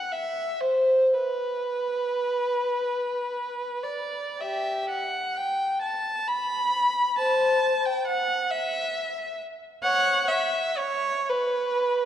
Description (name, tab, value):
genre	classical, free, expressive piece for unaccompanied violin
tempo	31-46 BPM (dotted quarters)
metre	6/8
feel	rubato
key	unclear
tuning	A4 = 438 Hz
part	warm violin	solo	0.0-12.1 s	G4 to B5	-24 LUFS	equal	none
room	wet concert hall reverb, RT60 2.5 s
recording	dark, warm production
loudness	-23 LUFS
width	side -10 dB against mid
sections	0.0-12.1 A section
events	none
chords	none